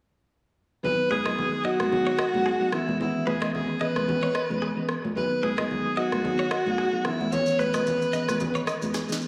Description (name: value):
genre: afrobeats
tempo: 111 BPM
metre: 4/4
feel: swing 55% on 16ths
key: B major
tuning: A4 = 440 Hz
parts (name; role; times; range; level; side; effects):
- breathy alto saxophone; melody; 0.8-8.7 s; E4 to C#5; -29 LUFS; equal; diffuse ambient delay
- bell-like tine electric piano; accompaniment; 0.8-9.3 s; E3 to G#4; -32 LUFS; equal; none
- congas; percussion; 0.8-8.9 s; none; -36 LUFS; equal; none
- direct-recorded clean electric guitar; riff; 1.1-9.1 s; G#4 to D#5; -36 LUFS; equal; analog chorus, diffuse ambient delay
- electronic rim click, shaker and snare drum; drums; 1.3-9.3 s; none; -36 LUFS; equal; none
room: wet plate reverb, RT60 2.1 s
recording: dreamy mix soaked in reverb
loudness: -26 LUFS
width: mono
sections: 0.8-9.3 A section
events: drum fill 8.9-9.3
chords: 0.8 B6; 2.7 C#m7; 5.2 B6; 7.1 C#m7